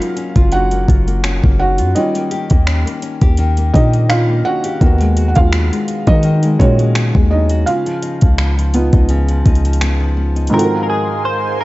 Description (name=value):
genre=contemporary R&B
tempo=84 BPM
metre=4/4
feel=swing 54% on 16ths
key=unclear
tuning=A4 = 440 Hz
part: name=felt-muted upright piano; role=accompaniment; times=0.0-11.6 s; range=G#2 to F#5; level=-19 LUFS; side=right 2 dB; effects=none
part: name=nylon-string guitar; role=arpeggios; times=0.0-11.1 s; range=C#3 to G4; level=-22 LUFS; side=left 4 dB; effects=none
part: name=smooth R&B drum kit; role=drums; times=0.0-10.7 s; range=finger snaps, hi-hat, kick drum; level=-15 LUFS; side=equal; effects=none
part: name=warm 808-style bass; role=bass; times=0.4-10.5 s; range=F#1 to D#3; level=-14 LUFS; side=equal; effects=none
part: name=clean electric guitar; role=melody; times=10.5-11.6 s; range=G#4 to B#4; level=-18 LUFS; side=equal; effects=analog chorus
part: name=lush unison pad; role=sustained chords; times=10.5-11.6 s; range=G#3 to B#5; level=-22 LUFS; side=right 1 dB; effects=chorus, sidechain pumping
room=little or no reverb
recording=dry, gritty hardware recording, cassette tape, nothing above 7.8 kHz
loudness=-12 LUFS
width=side -18 dB against mid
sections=0.0-10.5 A section; 10.5-11.6 B section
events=felt piano solo 0.0-10.5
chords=0.0 F#maj7; 2.0 D#7; 4.8 G#m7/D#; 7.7 C#9; 10.5 G#13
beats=0.53 1.24 | 1.96 2.67 3.38 4.10 | 4.81 5.53 6.24 6.96 | 7.67 8.38 9.10 9.81 | 10.53 11.24